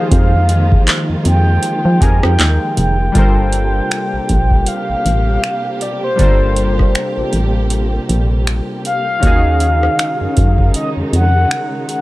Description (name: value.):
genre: contemporary R&B.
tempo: 79 BPM.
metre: 4/4.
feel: swing 58% on 16ths.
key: unclear.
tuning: A4 = 440 Hz.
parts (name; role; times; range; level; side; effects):
mellow horn-like synth lead; melody; 0.0-12.0 s; C5 to Ab5; -19 LUFS; left 1 dB; chorus, tape echo.
warm analog keys; accompaniment; 0.0-12.0 s; Eb3 to C5; -22 LUFS; left 2 dB; chorus.
dark studio string section; sustained chords; 0.0-12.0 s; C3 to G4; -23 LUFS; right 2 dB; sidechain pumping.
solid FM bass; bass; 0.1-11.5 s; F1 to F3; -14 LUFS; equal; none.
booming analog drum machine; drums; 0.1-12.0 s; finger snaps, handclaps, hi-hat, kick drum, rim click; -14 LUFS; equal; overdrive, vintage 12-bit sampler grit.
room: little or no reverb.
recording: none.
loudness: -12 LUFS.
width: side -18 dB against mid.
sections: 0.0-3.2 A section; 3.2-12.0 B section.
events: none.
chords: 0.0 Fm11; 3.2 Gm11; 9.2 Ebm11.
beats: | 0.11 0.87 1.63 2.39 | 3.15 3.91 4.67 5.43 | 6.19 6.95 7.71 8.47 | 9.23 9.99 10.75 11.51.